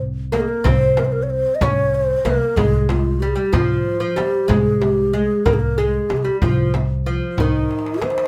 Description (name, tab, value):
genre	Arabic maqam ensemble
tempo	62 BPM (dotted quarters)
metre	6/8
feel	straight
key	C maqam kurd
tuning	A4 = 439 Hz
part	upright bass	bass	0.0-7.6 s	C2	-24 LUFS	equal	none
part	darbuka	percussion	0.0-8.3 s	none	-27 LUFS	equal	none
part	breathy mellow low ney	melody	0.3-8.3 s	Eb4 to Eb5	-22 LUFS	equal	none
part	oud	second line	0.3-8.3 s	Eb3 to Db4	-26 LUFS	equal	none
part	frame drum	percussion	0.3-8.2 s	none	-26 LUFS	equal	none
room	light reverb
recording	none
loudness	-18 LUFS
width	mono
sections	0.6-8.3 A section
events	drum fill 7.7-8.3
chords	none